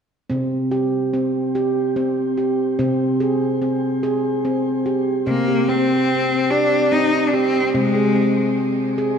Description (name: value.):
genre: world meditative, meditative tuned percussion.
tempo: 73 BPM.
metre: 3/4.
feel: straight.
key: unclear.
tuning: A4 = 441 Hz.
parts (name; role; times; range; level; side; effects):
handpan; arpeggios; 0.3-9.2 s; C3 to Ab4; -18 LUFS; right 2 dB; shimmer reverb.
rich cello; melody; 5.3-8.5 s; Ab3 to Eb4; -19 LUFS; left 4 dB; shimmer reverb, ping-pong delay.
room: wet concert hall reverb, RT60 2.3 s.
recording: dark, warm production.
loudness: -17 LUFS.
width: side -7 dB against mid.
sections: 0.3-5.3 A section; 5.3-9.2 B section.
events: none.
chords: 0.3 C5; 2.8 Ab/C; 5.3 C5; 7.7 Ab/C.